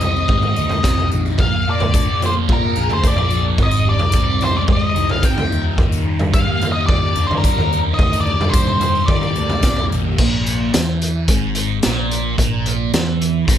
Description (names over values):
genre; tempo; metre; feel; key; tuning
psychedelic rock; 109 BPM; 4/4; straight; Bb mixolydian; A4 = 440 Hz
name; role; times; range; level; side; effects
octave-fuzz lead guitar; melody; 0.0-9.9 s; Bb4 to G5; -20 LUFS; left 2 dB; distortion, slapback echo
thick fuzz guitar; riff; 0.0-13.6 s; Ab2 to Ab4; -21 LUFS; right 2 dB; distortion, phaser
fingered electric bass; bass; 0.0-13.6 s; Ab1 to Eb3; -22 LUFS; equal; none
raw garage drum kit; drums; 0.0-13.6 s; crash cymbal, hi-hat, kick drum, snare drum, toms; -18 LUFS; equal; none
tambourine; percussion; 0.0-13.1 s; none; -34 LUFS; left 10 dB; none
room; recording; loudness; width
light reverb; none; -15 LUFS; side -10 dB against mid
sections
0.0-10.2 A section; 10.2-13.6 B section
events
none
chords
0.0 Abmaj7; 1.4 Bb7; 3.6 Abmaj7; 5.5 Ebmaj7; 10.2 Bb7(b5, no3)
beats
0.30 0.85 | 1.40 1.95 2.50 3.05 | 3.60 4.15 4.70 5.25 | 5.79 6.34 6.89 7.44 | 7.99 8.54 9.09 9.64 | 10.19 10.73 11.28 11.83 | 12.38 12.93 13.47